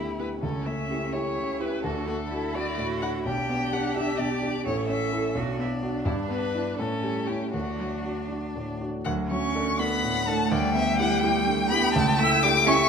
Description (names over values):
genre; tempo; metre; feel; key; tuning
quick classical-period movement for piano quartet; 84 BPM (dotted quarters); 6/8; rubato; D major; A4 = 443 Hz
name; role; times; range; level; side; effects
warm violin; melody; 0.0-12.9 s; E4 to E6; -28 LUFS; left 4 dB; none
rich cello; second line; 0.0-12.7 s; F#3 to A4; -31 LUFS; right 8 dB; none
warm violin; second line; 0.0-12.9 s; C#4 to G5; -32 LUFS; left 1 dB; none
warm grand piano; accompaniment; 0.0-12.9 s; A1 to A4; -28 LUFS; equal; none
room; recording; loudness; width
wet recital hall reverb, RT60 1.4 s; minimal, uncompressed stereo recording; -24 LUFS; side -6 dB against mid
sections
0.0-9.1 A section; 9.1-12.9 A section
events
none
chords
0.4 A7/C#; 1.8 D; 3.3 G/B; 4.7 A; 5.4 Bm; 6.1 Em7/G; 6.8 A7; 7.5 D; 10.5 Em7/D; 11.9 A7/C#